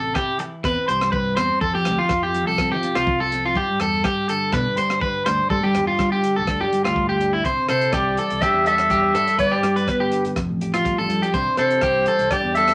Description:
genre	highlife guitar band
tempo	123 BPM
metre	4/4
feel	straight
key	C major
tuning	A4 = 440 Hz
part	clean electric guitar	accompaniment	0.0-12.7 s	F2 to G4	-29 LUFS	equal	none
part	electric guitar at the edge of break-up	arpeggios	0.0-12.7 s	E4 to C5	-23 LUFS	equal	none
part	fingered electric bass	bass	0.0-12.7 s	F1 to G3	-31 LUFS	equal	none
part	tight funk drum kit	drums	0.1-12.7 s	hi-hat, kick drum, rim click	-31 LUFS	equal	none
part	growling clarinet	melody	7.7-12.7 s	B4 to E5	-22 LUFS	equal	none
room	wet studio reverb, RT60 0.5 s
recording	vinyl crackle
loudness	-20 LUFS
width	mono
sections	0.0-7.4 A section; 7.4-12.7 B section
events	none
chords	0.0 C; 1.6 F; 3.6 G; 7.4 Cadd9; 9.4 G; 10.4 Fadd9; 11.3 Cadd9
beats	0.15 0.64 1.13 | 1.61 2.10 2.59 3.07 | 3.56 4.05 4.53 5.02 | 5.50 5.99 6.48 6.96 | 7.45 7.93 8.42 8.91 | 9.39 9.88 10.37 10.85 | 11.34 11.83 12.31

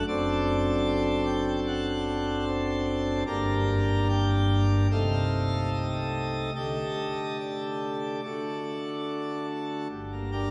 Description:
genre	classical, chorale-style piece for pipe organ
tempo	73 BPM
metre	4/4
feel	uneven beats, rubato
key	unclear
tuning	A4 = 440 Hz
part	pipe organ, plenum	solo	0.0-10.5 s	F#1 to G5	-28 LUFS	equal	none
room	wet church reverb, RT60 3.7 s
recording	recorded in a church or concert hall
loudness	-28 LUFS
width	mono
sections	0.0-9.9 A section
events	none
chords	0.1 D7/F#; 3.3 Gm; 4.9 Adim/C; 6.5 Dsus4; 8.2 D; 9.9 Gm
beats	| 0.08 0.87 1.67 2.47 | 3.27 4.10 4.92 5.72 | 6.55 7.40 8.24 9.08 | 9.92

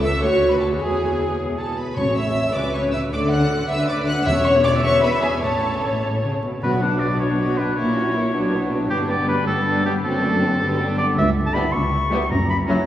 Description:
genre	quick classical-period movement for symphony orchestra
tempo	105 BPM (dotted quarters)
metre	6/8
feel	rubato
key	A major, B minor from 6.6 s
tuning	A4 = 440 Hz
part	rich chamber violin section	melody	0.0-12.8 s	D4 to F#6	-29 LUFS	equal	none
part	rich studio violin section	second line	0.0-12.8 s	B3 to F#5	-25 LUFS	left 1 dB	none
part	rich chamber viola section	accompaniment	0.0-12.8 s	D3 to E5	-25 LUFS	equal	none
part	rich chamber double bass section	bass	0.0-12.8 s	E1 to D2	-28 LUFS	equal	none
part	warm symphonic cello section	bass	0.0-12.8 s	C#2 to D3	-25 LUFS	equal	none
part	timpani	percussion	2.0-7.2, 12.3-12.8 s	E2 to B2	-28 LUFS	left 1 dB	none
part	clear oboe	second line	6.6-12.9 s	G4 to C#6	-23 LUFS	equal	none
part	mellow French horn section	sustained chords	6.6-12.8 s	F#3 to E4	-27 LUFS	equal	none
room	wet cathedral reverb, RT60 4.5 s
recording	recorded in a church or concert hall, vinyl crackle, small room ambience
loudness	-18 LUFS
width	side -12 dB against mid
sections	0.0-6.6 A section; 6.6-12.9 B section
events	none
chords	0.2 Dmaj7; 0.8 E; 2.0 A; 2.5 C#m7; 3.1 D; 4.3 C#m/E; 5.4 A; 6.6 Bm; 7.8 F#7/A#; 8.3 Bm; 8.9 G; 10.0 D7/F#; 10.6 G; 11.2 C#m7b5; 12.3 F#5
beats	0.21 | 0.79 1.38 | 1.96 2.55 | 3.12 3.69 | 4.26 4.84 | 5.42 6.02 | 6.62 7.20 | 7.77 8.33 | 8.90 9.47 | 10.04 10.60 | 11.17 11.73 | 12.30

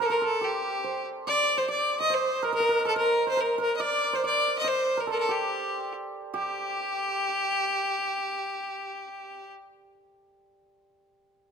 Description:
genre	medieval dance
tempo	142 BPM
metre	3/4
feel	straight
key	G minor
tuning	A4 = 442 Hz
part	rich fiddle	melody	0.0-9.5 s	G4 to Eb5	-26 LUFS	left 1 dB	none
part	hammered dulcimer	second line	0.0-9.5 s	G4 to Eb5	-31 LUFS	right 4 dB	none
room	moderate recital hall reverb, RT60 1.6 s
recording	close, detailed microphones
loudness	-25 LUFS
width	side -6 dB against mid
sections	0.0-6.3 A section; 6.3-8.9 B section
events	none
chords	none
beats	0.41 0.84 | 1.26 1.69 2.12 | 2.54 2.97 3.39 | 3.81 4.24 4.66 | 5.08 5.50 5.92 | 6.34 6.76 7.18 | 7.60 8.02 8.44

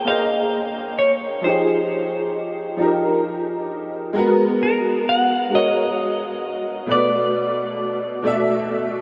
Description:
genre	R&B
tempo	44 BPM (dotted quarters)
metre	6/8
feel	straight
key	unclear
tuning	A4 = 440 Hz
part	semi-hollow electric guitar	melody	0.0-8.7 s	Bb4 to Gb5	-25 LUFS	equal	subtle chorus, delay
part	clear baby grand piano	accompaniment	0.0-9.0 s	B2 to E5	-22 LUFS	equal	ensemble chorus
room	wet huge ambient reverb, RT60 6.5 s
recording	dreamy mix soaked in reverb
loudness	-20 LUFS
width	mono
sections	0.0-9.0 A section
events	none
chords	0.0 Bbm9; 1.4 Fm9; 4.2 Abm9; 6.9 Bm7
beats	0.06 | 1.43 2.79 | 4.15 5.52 | 6.88 8.24

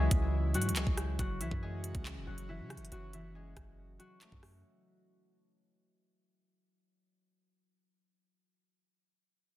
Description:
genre	hip hop, drill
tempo	139 BPM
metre	4/4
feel	half-time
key	unclear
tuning	A4 = 440 Hz
part	concert harp	melody	0.0-7.5 s	E3 to A4	-39 LUFS	left 3 dB	digital delay
part	airy breathy pad	sustained chords	0.0-4.6 s	C#3 to F#4	-46 LUFS	right 3 dB	chorus
part	long sustained 808-style bass	bass	0.0-4.6 s	E1 to C#3	-35 LUFS	equal	none
part	drill drum kit	drums	0.1-4.5 s	handclaps, hi-hat, kick drum, rim click	-35 LUFS	equal	none
room	little or no reverb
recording	dense, heavily limited modern master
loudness	-32 LUFS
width	side -15 dB against mid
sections	0.0-4.6 A section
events	fade-out 0.0-4.6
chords	0.0 C#m; 1.2 F#m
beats	0.33 0.76 | 1.19 1.62 2.06 2.49 | 2.92 3.35 3.78 4.21

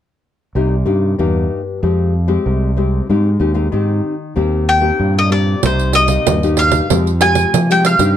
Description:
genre	samba and choro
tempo	95 BPM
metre	4/4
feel	straight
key	C minor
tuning	A4 = 435 Hz
part	nylon-string guitar	accompaniment	0.6-8.2 s	G2 to G4	-18 LUFS	left 5 dB	none
part	overdriven fingered electric bass	bass	0.6-8.1 s	C2 to F3	-16 LUFS	right 1 dB	none
part	bowl-back mandolin	melody	4.7-8.2 s	C5 to Ab5	-15 LUFS	equal	plate reverb
part	pandeiro	percussion	5.6-8.2 s	none	-18 LUFS	right 9 dB	none
room	light reverb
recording	none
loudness	-13 LUFS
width	side -10 dB against mid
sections	0.6-5.6 A section; 5.6-8.2 B section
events	none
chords	0.6 Cm7; 1.8 Fmadd9; 3.1 Abmaj7; 4.4 Eb6; 5.6 Cm7; 6.9 Fmadd9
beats	| 0.56 1.19 1.82 2.46 | 3.09 3.73 4.36 5.00 | 5.63 6.27 6.90 7.53 | 8.17

